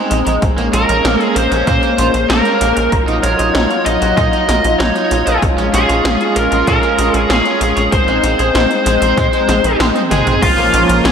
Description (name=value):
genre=synthwave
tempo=96 BPM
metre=4/4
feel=straight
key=Bb minor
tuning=A4 = 440 Hz
part: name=brassy analog pad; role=sustained chords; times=0.0-11.1 s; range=F3 to F4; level=-17 LUFS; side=equal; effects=chorus, sidechain pumping
part: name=raw garage guitar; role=riff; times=0.0-11.1 s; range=Ab3 to Eb5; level=-21 LUFS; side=right 4 dB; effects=overdrive, lush chorus, diffuse ambient delay
part: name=tight sequencer bass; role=bass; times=0.1-11.1 s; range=Ab1 to Bb2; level=-18 LUFS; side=equal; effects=sidechain pumping
part: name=80s electronic pad drums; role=drums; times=0.1-11.1 s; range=crash cymbal, hi-hat, snare drum, toms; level=-21 LUFS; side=equal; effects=gated reverb on snare and toms
part: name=electronic kick drum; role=drums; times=0.4-10.6 s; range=none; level=-18 LUFS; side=equal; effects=none
part: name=high-gain lead guitar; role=melody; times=0.7-11.1 s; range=F4 to Eb5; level=-15 LUFS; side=equal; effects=distortion, vintage 12-bit sampler grit, diffuse ambient delay
room=wet cathedral reverb, RT60 6.4 s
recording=dreamy mix soaked in reverb, faint mains hum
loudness=-11 LUFS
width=side -7 dB against mid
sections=0.0-10.4 A section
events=drum fill 10.0-10.4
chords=0.4 Bbm7; 2.9 Ebmadd9/Bb; 5.4 Db/Bb; 7.9 Ab/Bb; 10.4 Bbm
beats=| 0.42 1.05 1.68 2.30 | 2.92 3.55 4.17 4.80 | 5.42 6.05 6.67 7.30 | 7.92 8.55 9.18 9.80 | 10.43 11.05